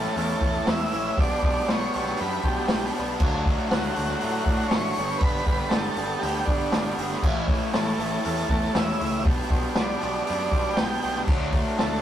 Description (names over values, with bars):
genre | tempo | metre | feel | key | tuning
garage rock duo or trio | 119 BPM | 4/4 | straight | unclear | A4 = 440 Hz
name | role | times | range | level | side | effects
combo organ | melody | 0.0-12.0 s | D4 to G5 | -29 LUFS | right 2 dB | none
combo organ | sustained chords | 0.0-12.0 s | D4 to D5 | -39 LUFS | equal | none
raw garage guitar | riff | 0.0-12.0 s | G2 to E4 | -27 LUFS | equal | overdrive
growling picked electric bass | bass | 0.0-12.0 s | G1 to A2 | -33 LUFS | equal | overdrive
vintage drum kit | drums | 0.0-11.9 s | crash cymbal, hi-hat, kick drum, snare drum | -25 LUFS | equal | none
room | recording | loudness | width
moderate small room reverb, RT60 0.5 s | rough rehearsal-room recording, tube saturation | -22 LUFS | side -11 dB against mid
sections
0.0-12.0 A section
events
none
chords
0.0 A; 1.2 G/B; 3.2 D; 5.0 G; 7.2 A; 9.3 G/B; 11.3 D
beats
0.15 0.66 | 1.17 1.68 2.18 2.69 | 3.20 3.70 4.21 4.71 | 5.22 5.72 6.23 6.74 | 7.24 7.75 8.25 8.76 | 9.26 9.76 10.27 10.77 | 11.28 11.78